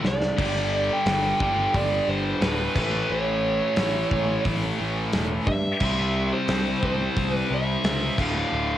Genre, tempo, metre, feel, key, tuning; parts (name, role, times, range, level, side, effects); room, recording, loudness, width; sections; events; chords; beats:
hard rock; 88 BPM; 4/4; straight; A4 = 441 Hz
scooped high-gain guitar; riff; 0.0-8.8 s; D2 to C4; -30 LUFS; left 7 dB; distortion, cassette tape
tight distorted guitar; riff; 0.0-8.8 s; D2 to C4; -32 LUFS; right 7 dB; distortion, cassette tape
fuzz picked electric bass; bass; 0.0-8.8 s; D1 to G2; -28 LUFS; equal; overdrive
gated 80s drum kit; drums; 0.0-8.3 s; crash cymbal, hi-hat, kick drum, snare drum; -28 LUFS; equal; cassette tape
biting lead guitar; melody; 0.1-8.8 s; B4 to G5; -26 LUFS; right 1 dB; overdrive, cassette tape, tape echo
distorted electric guitar; riff; 0.4-8.8 s; D2 to C4; -31 LUFS; equal; distortion, cassette tape
light reverb; home recording on cassette; -21 LUFS; side -12 dB against mid
0.0-8.8 A section
drum fill 0.0-0.4
0.4 G5; 2.8 A; 5.8 C; 8.2 Dm
| 0.39 1.07 1.75 2.42 | 3.10 3.78 4.46 5.14 | 5.81 6.49 7.17 7.85 | 8.53